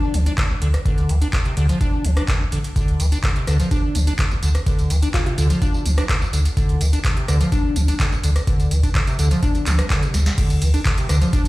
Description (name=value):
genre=acid house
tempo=126 BPM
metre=4/4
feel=straight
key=D minor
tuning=A4 = 441 Hz
part: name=liquid acid bass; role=riff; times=0.0-11.5 s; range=D2 to D4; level=-23 LUFS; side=equal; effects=wide subtle chorus, vintage 12-bit sampler grit, digital delay
part: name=warm sub bass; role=bass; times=0.1-11.2 s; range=A1 to D2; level=-18 LUFS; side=equal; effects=tube saturation, sidechain pumping
part: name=booming analog drum machine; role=drums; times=0.1-11.5 s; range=crash cymbal, handclaps, hi-hat, rim click, snare drum, tambourine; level=-27 LUFS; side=right 1 dB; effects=overdrive
part: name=electronic kick drum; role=drums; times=0.4-11.4 s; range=none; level=-21 LUFS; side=equal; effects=overdrive
part: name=bell-like FM electric piano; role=melody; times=5.1-5.3 s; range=F4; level=-33 LUFS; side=left 1 dB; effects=chorus, phaser, tape echo
room=little or no reverb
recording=played on a big sound system in a bare room, large studio reverb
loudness=-17 LUFS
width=side -19 dB against mid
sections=0.0-10.4 A section; 10.4-11.5 B section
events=drum fill 10.1; drop 10.4-11.5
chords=none